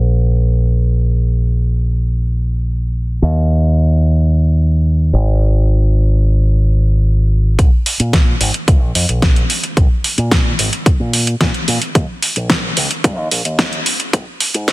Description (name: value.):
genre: nu-disco, nu disco.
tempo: 110 BPM.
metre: 4/4.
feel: straight.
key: unclear.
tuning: A4 = 444 Hz.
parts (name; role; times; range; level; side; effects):
fingered electric bass with an envelope filter; bass; 0.0-14.7 s; Ab1 to Bb2; -13 LUFS; equal; none.
electronic kick drum; drums; 7.6-14.7 s; none; -13 LUFS; equal; none.
pop drum kit; drums; 7.6-14.7 s; hi-hat, snare drum; -16 LUFS; equal; none.
room: little or no reverb.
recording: dense, heavily limited modern master, high-pass filter.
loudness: -12 LUFS.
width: side -20 dB against mid.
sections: 0.0-7.6 A section; 7.6-14.7 B section.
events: build-up 7.6-14.7; filter sweep 7.6-14.7.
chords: none.